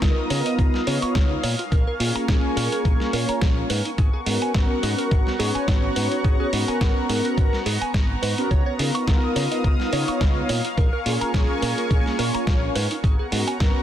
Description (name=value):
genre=nu-disco, nu disco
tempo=106 BPM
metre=4/4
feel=swing 55% on 16ths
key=G# dorian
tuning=A4 = 443 Hz
part: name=mellow synth brass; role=accompaniment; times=0.0-13.8 s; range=A#3 to C#5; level=-26 LUFS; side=equal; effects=chorus, cassette tape, analog delay
part: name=lush unison pad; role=sustained chords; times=0.0-13.8 s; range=B3 to D#6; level=-30 LUFS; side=left 1 dB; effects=chorus, sidechain pumping
part: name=fingered electric bass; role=bass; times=0.0-13.7 s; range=G#1 to C#3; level=-26 LUFS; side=equal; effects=tube saturation
part: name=dusty soul sampler-style drum kit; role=drums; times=0.0-13.7 s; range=hi-hat, snare drum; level=-28 LUFS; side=right 1 dB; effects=none
part: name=electronic kick drum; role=drums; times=0.0-13.7 s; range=none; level=-20 LUFS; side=equal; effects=none
part: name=direct-recorded clean electric guitar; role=riff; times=0.3-13.6 s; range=D#4 to C#6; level=-31 LUFS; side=right 3 dB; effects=analog chorus, analog delay
room=light reverb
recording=dense, heavily limited modern master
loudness=-19 LUFS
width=side -11 dB against mid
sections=0.0-13.8 A section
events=none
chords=0.0 C#13; 1.4 A#m7; 3.7 G#m11; 8.5 C#13; 10.5 A#m7; 12.8 G#m11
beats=0.02 0.59 1.15 | 1.72 2.28 2.85 3.42 | 3.98 4.55 5.11 5.68 | 6.25 6.81 7.38 7.95 | 8.51 9.08 9.64 10.21 | 10.78 11.34 11.91 12.47 | 13.04 13.61